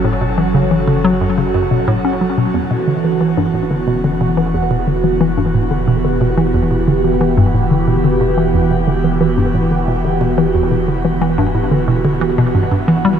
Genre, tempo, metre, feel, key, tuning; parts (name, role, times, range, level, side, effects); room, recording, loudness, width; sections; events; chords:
ambient, sequencer-driven space music; 90 BPM; 4/4; straight; E dorian; A4 = 439 Hz
phased analog pad; sustained chords; 0.0-13.2 s; E3 to A4; -16 LUFS; right 2 dB; phaser, chorus
hollow square pluck; riff; 0.0-13.1 s; E2 to C#4; -15 LUFS; left 1 dB; chorus, phaser, tape echo
warm sub bass; bass; 0.0-13.2 s; E1 to F#1; -23 LUFS; equal
moderate shimmer reverb, RT60 8.6 s; dark, warm production, faint mains hum; -12 LUFS; side -8 dB against mid
0.0-2.5 A section; 2.5-13.2 B section
0.0 F#m; 2.5 Em7